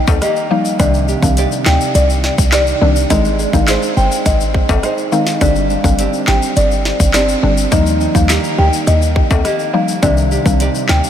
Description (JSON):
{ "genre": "dancehall", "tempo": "104 BPM", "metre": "4/4", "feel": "straight", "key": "C minor", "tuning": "A4 = 441 Hz", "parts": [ { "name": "folk marimba with soft mallets", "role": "melody", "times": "0.0-11.1 s", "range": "D5 to G5", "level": "-18 LUFS", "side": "left 1 dB", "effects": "ping-pong delay" }, { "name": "nylon-string guitar", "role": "arpeggios", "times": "0.0-11.1 s", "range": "C3 to D5", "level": "-21 LUFS", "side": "right 5 dB", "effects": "ping-pong delay" }, { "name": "short 808-style bass", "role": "bass", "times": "0.1-11.0 s", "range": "G1 to Eb2", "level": "-16 LUFS", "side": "equal", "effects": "none" }, { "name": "island pop drum kit", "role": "drums", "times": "0.1-11.0 s", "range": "handclaps, hi-hat, kick drum, rim click, snare drum", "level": "-18 LUFS", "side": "equal", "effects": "overdrive" }, { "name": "timbales and tube shaker", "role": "percussion", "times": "0.1-11.1 s", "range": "none", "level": "-25 LUFS", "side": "left 7 dB", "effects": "none" }, { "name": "mallet-like synth pluck", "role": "accompaniment", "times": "0.5-10.6 s", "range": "D3 to Eb4", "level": "-20 LUFS", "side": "left 4 dB", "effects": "chorus" } ], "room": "moderate huge ambient reverb, RT60 7.9 s", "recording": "dreamy mix soaked in reverb", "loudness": "-11 LUFS", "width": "side -9 dB against mid", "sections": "0.0-11.1 A section", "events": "none", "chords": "0.0 Ebadd9; 0.8 Cmadd9; 3.1 Ab; 5.4 Gsus4; 7.7 Ebadd9; 10.0 Cmadd9" }